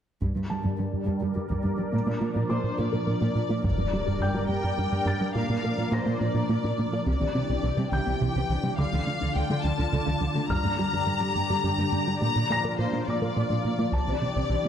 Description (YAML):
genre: cinematic, hybrid orchestral and electronic film score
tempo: 70 BPM (dotted quarters)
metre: 6/8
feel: straight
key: G dorian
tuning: A4 = 440 Hz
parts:
  - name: analog string pad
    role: sustained chords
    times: 0.5-14.7 s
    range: D3 to D5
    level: -31 LUFS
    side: equal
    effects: ensemble chorus, low-pass filter
  - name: resonant blip pluck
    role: arpeggios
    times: 0.2-14.7 s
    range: C3 to Bb4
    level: -35 LUFS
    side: left 1 dB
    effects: none
  - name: plucky analog bass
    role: riff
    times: 0.2-14.7 s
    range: C2 to Bb3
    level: -29 LUFS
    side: right 1 dB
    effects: low-pass filter
  - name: warm symphonic cello section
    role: bass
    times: 0.2-14.7 s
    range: G2 to D3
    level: -31 LUFS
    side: right 2 dB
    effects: none
  - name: solo taiko drums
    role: drums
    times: 0.2-14.7 s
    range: none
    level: -33 LUFS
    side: equal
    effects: none
  - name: warm concert grand piano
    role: texture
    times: 0.5-14.7 s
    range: G5 to Bb6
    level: -38 LUFS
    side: left 1 dB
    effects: tape echo
  - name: warm symphonic violin section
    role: melody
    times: 2.5-14.7 s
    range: C5 to Bb5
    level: -31 LUFS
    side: left 5 dB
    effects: low-pass filter
  - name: impact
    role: sound effects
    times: 3.6-5.4 s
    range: none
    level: -34 LUFS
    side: equal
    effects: none
room: wet recital hall reverb, RT60 1.6 s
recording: none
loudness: -24 LUFS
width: side -9 dB against mid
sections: 0.2-3.6 A section; 3.6-14.7 B section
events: filter sweep 0.2-3.6; impact 3.6-5.4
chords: 0.2 Gm; 1.9 Bb; 3.6 Gm; 5.4 Bb; 7.1 Cadd9; 8.8 Dm; 10.5 Gm; 12.2 Bb; 13.9 Cadd9